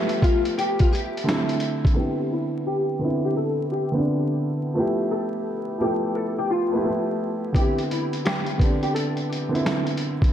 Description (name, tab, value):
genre	lo-fi hip hop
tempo	86 BPM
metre	4/4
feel	swing 65% on 16ths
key	C major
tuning	A4 = 440 Hz
part	archtop guitar, miked and amplified	melody	0.0-9.6 s	E4 to A4	-27 LUFS	left 2 dB	ensemble chorus, low-pass filter, ping-pong delay
part	warm upright piano	accompaniment	0.0-10.3 s	D3 to E5	-24 LUFS	right 1 dB	cassette tape, low-pass filter
part	lo-fi sampler-style drum kit	drums	0.1-2.0, 7.5-10.3 s	finger snaps, hi-hat, kick drum, snare drum	-23 LUFS	equal	none
room	moderate plate reverb, RT60 3.6 s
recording	dreamy mix soaked in reverb, vinyl crackle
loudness	-21 LUFS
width	side -10 dB against mid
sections	0.0-2.0 A section; 2.0-10.3 B section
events	filter sweep 2.0-10.3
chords	0.0 Fmaj9#11; 1.3 C69; 2.0 Cmaj9; 4.8 Fmaj9#11; 7.5 Cmaj9